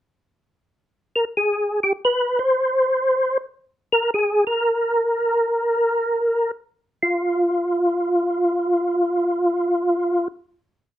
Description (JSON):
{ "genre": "jazz", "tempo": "free time", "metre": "none", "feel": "none", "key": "unclear", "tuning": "A4 = 439 Hz", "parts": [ { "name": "percussive tonewheel organ", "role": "solo", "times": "1.2-10.3 s", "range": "F4 to C5", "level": "-18 LUFS", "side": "equal", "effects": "slow rotary speaker, chorus vibrato" } ], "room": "moderate small room reverb, RT60 0.5 s", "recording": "rough home demo mix", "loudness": "-19 LUFS", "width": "side -13 dB against mid", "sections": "1.1-7.0 A section; 7.0-10.9 final note", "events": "slowing down 3.9-7.0", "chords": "none" }